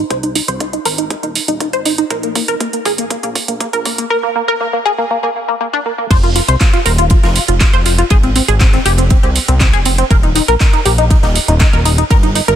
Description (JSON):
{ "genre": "progressive house", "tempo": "120 BPM", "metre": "4/4", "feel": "straight", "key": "F minor", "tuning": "A4 = 440 Hz", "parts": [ { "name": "tight sequenced synth", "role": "arpeggios", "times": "0.0-12.5 s", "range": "Bb3 to C5", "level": "-16 LUFS", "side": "equal", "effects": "chorus, phaser, sidechain pumping, tape echo" }, { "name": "fat analog bass", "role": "bass", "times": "0.0-12.6 s", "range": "Eb1 to C2", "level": "-16 LUFS", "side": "equal", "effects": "sidechain pumping" }, { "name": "electronic kick drum", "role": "drums", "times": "0.1-12.2 s", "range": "none", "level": "-12 LUFS", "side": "equal", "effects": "high-pass filter on kick, studio reverb, high-pass filter on room" }, { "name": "house drum kit", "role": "drums", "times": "0.1-12.6 s", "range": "crash cymbal, handclaps, hi-hat", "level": "-18 LUFS", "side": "right 3 dB", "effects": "studio reverb" }, { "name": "big rock drum kit", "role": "drums", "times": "6.1-12.5 s", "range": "ride cymbal, snare drum", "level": "-25 LUFS", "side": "right 3 dB", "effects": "sidechain pumping on cymbals, high-pass filter on cymbals, low-pass filter on cymbals, studio reverb, high-pass filter on snare, low-pass filter on snare, high-pass filter on room, low-pass filter on room" } ], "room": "light reverb", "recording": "dense, heavily limited modern master, high-pass filter", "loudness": "-11 LUFS", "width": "side -10 dB against mid", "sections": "0.0-6.1 A section; 6.1-12.6 B section", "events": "build-up 0.0-6.1; drum fill 0.0-4.1; filter sweep on synth arpeggio sound 0.0-6.1; filter sweep 0.0-6.1; drop 6.1-12.6", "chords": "0.0 Ab; 2.1 Bb5; 6.1 Fm7; 10.1 Eb", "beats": "| 0.10 0.60 1.10 1.60 | 2.10 2.60 3.10 3.60 | 4.11 4.61 5.11 5.61 | 6.11 6.61 7.11 7.61 | 8.11 8.61 9.11 9.61 | 10.11 10.61 11.11 11.61 | 12.11" }